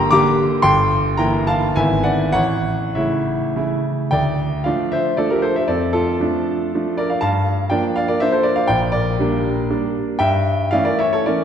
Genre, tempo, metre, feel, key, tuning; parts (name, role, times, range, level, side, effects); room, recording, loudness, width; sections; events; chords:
classical, romantic triple-time dance for piano with dotted rhythms; 93-128 BPM; 3/4; rubato; D minor; A4 = 439 Hz
clear concert grand piano; solo; 0.0-11.4 s; G1 to E6; -16 LUFS; equal
wet concert hall reverb, RT60 2.3 s; heard from further back in the room; -16 LUFS; side -8 dB against mid
0.0-4.1 A section; 4.1-11.4 B section
0.0 Gm; 0.6 Edim/G; 1.8 E7/G#; 2.3 A; 4.1 Dm; 5.7 Dm/F; 7.2 Gm7; 8.7 Gm/Bb; 10.2 A7/G